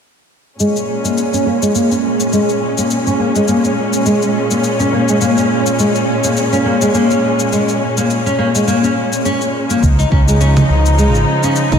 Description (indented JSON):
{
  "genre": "organic downtempo",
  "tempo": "104 BPM",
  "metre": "4/4",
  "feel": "swing 56% on 16ths",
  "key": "Bb minor",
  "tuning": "A4 = 440 Hz",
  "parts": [
    { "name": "muted studio string section", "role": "sustained chords", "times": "0.6-11.8 s", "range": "Bb2 to Eb4", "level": "-17 LUFS", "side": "equal", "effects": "sidechain pumping" },
    { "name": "nylon-string guitar", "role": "arpeggios", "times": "0.6-11.8 s", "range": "Ab3 to Eb4", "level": "-15 LUFS", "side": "left 1 dB", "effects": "low-pass filter, ping-pong delay" },
    { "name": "cabasa and congas", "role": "drums", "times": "0.6-11.8 s", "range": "none", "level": "-23 LUFS", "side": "equal", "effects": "none" },
    { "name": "fretless electric bass", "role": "bass", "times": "9.8-11.8 s", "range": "Ab1 to Db2", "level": "-12 LUFS", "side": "equal", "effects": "sidechain pumping" },
    { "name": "electronic kick drum", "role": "drums", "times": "9.8-11.8 s", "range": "none", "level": "-15 LUFS", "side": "equal", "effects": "none" }
  ],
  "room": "wet lush hall reverb, RT60 2.3 s",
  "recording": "dreamy mix soaked in reverb",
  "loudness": "-12 LUFS",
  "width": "side -7 dB against mid",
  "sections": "0.6-11.8 A section",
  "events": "filter sweep on nylon-string guitar 0.6-11.8",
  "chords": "0.6 Bbm7; 9.8 Dbadd9"
}